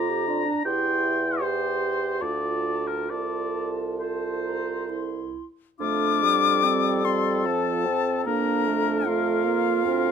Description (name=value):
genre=classical, slow romantic movement for wind quintet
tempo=64-81 BPM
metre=3/4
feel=rubato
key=F major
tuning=A4 = 440 Hz
part: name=bright concert flute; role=melody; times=0.0-10.1 s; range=F5 to D6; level=-28 LUFS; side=left 12 dB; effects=none
part: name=clear oboe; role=second line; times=0.0-10.1 s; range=F4 to Bb5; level=-29 LUFS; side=left 2 dB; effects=none
part: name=dark clarinet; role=accompaniment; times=0.0-10.1 s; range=C4 to G4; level=-29 LUFS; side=right 11 dB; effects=none
part: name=warm French horn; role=accompaniment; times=0.0-10.1 s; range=F3 to A4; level=-30 LUFS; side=equal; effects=none
part: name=mellow bassoon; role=bass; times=0.0-10.1 s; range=C2 to F2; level=-29 LUFS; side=right 2 dB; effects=none
room=light reverb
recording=close, detailed microphones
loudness=-22 LUFS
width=side -7 dB against mid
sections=0.0-5.8 A section; 5.8-10.1 B section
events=none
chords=0.0 Gm7/F; 0.7 C/E; 2.2 Dm; 3.1 F/C; 4.9 C; 5.8 F; 8.3 Bb/F